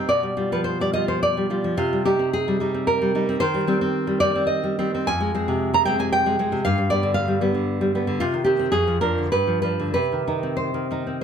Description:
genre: romantic piece for solo classical guitar.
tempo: 91-118 BPM.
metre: 3/4.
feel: rubato.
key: C minor.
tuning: A4 = 439 Hz.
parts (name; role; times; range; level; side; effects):
nylon-string guitar; solo; 0.0-11.2 s; F2 to Bb5; -20 LUFS; equal; slapback echo.
room: light reverb.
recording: close, detailed microphones.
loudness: -20 LUFS.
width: side -7 dB against mid.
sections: 0.0-11.2 A section.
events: none.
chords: 0.1 G7/B; 1.8 Cm; 3.4 Cm/Eb; 5.1 Fm; 6.6 G; 8.2 Cm; 8.7 Ddim/F; 9.3 G7; 9.9 Cm.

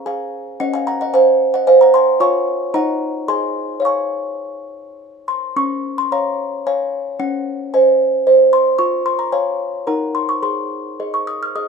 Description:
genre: classical, lullaby for music box.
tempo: 110 BPM.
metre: 3/4.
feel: rubato.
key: Db major.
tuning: A4 = 441 Hz.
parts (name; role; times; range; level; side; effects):
music box; solo; 0.0-11.7 s; Db4 to F6; -15 LUFS; right 1 dB; none.
room: little or no reverb.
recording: minimal, uncompressed stereo recording.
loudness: -14 LUFS.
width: side -5 dB against mid.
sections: 0.0-5.6 A section; 5.6-11.7 A section.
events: none.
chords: 0.0 Db (rootless); 0.6 Cdim/Db; 2.2 Db/F; 2.7 Ebm; 3.3 Ab; 3.9 Db; 7.2 Cdim/Db; 8.8 Db/F; 9.9 Ebm; 10.4 Ab.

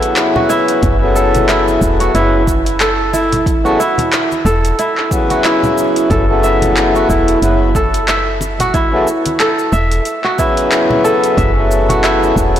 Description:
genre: organic downtempo.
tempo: 91 BPM.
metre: 4/4.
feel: swing 57% on 16ths.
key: F# minor.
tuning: A4 = 440 Hz.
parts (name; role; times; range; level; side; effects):
hand-pumped harmonium; accompaniment; 0.0-12.6 s; C#3 to B4; -16 LUFS; left 2 dB; sidechain pumping, digital delay, shimmer reverb.
kora; arpeggios; 0.0-12.6 s; E4 to E5; -16 LUFS; right 2 dB; digital delay, shimmer reverb.
afro-pop drum kit; drums; 0.0-12.6 s; cabasa, handclaps, hi-hat; -20 LUFS; equal; overdrive.
congas; percussion; 0.4-12.3 s; none; -24 LUFS; equal; none.
woody FM bass; bass; 0.8-12.6 s; E1 to F#1; -17 LUFS; equal; tube saturation.
electronic kick drum; drums; 0.8-12.5 s; none; -18 LUFS; equal; overdrive.
room: moderate lush hall reverb, RT60 2.3 s.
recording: blown-out, overdriven recording, overdrive.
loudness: -11 LUFS.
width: side -10 dB against mid.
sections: 0.0-12.6 A section.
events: none.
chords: 0.0 F#m7.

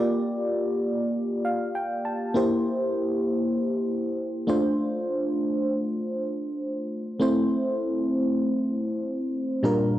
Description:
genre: pop.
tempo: 99 BPM.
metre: 4/4.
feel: swing 55% on 16ths.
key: unclear.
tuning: A4 = 442 Hz.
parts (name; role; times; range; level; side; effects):
FM electric piano; solo; 0.0-10.0 s; Bb2 to A5; -24 LUFS; equal; chorus, cassette tape.
room: moderate spring reverb, RT60 1.9 s.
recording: home recording on cassette.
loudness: -24 LUFS.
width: side -13 dB against mid.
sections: 0.0-10.0 A section.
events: FM electric piano fill 1.1-2.4.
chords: 0.0 Gm7/Bb; 2.4 C7; 4.5 Dm7; 7.2 Am.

